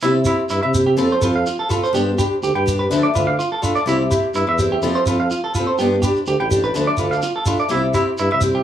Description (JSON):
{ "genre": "highlife guitar band", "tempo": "125 BPM", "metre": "4/4", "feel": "straight", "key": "C major", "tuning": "A4 = 441 Hz", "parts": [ { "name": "picked acoustic archtop guitar", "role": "accompaniment", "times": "0.0-8.6 s", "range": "F3 to A4", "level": "-21 LUFS", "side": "left 2 dB", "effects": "none" }, { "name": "clean electric guitar", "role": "arpeggios", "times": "0.0-8.6 s", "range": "E4 to G5", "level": "-21 LUFS", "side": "right 3 dB", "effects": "analog delay" }, { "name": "warm tuba", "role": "bass", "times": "0.0-8.6 s", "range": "A1 to C3", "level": "-21 LUFS", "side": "equal", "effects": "none" }, { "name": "shekere", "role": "percussion", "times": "0.0-8.5 s", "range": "none", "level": "-24 LUFS", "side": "right 2 dB", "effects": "none" }, { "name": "agogo bells", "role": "percussion", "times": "0.3-8.4 s", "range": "none", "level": "-31 LUFS", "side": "left 12 dB", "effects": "none" } ], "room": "moderate studio reverb, RT60 0.5 s", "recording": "studio ambience", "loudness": "-16 LUFS", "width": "side -10 dB against mid", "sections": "0.0-8.6 A section", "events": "none", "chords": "0.0 C; 1.0 F; 2.0 G; 2.9 Dm; 3.9 C; 4.8 F; 5.8 G; 6.8 Dm; 7.7 C" }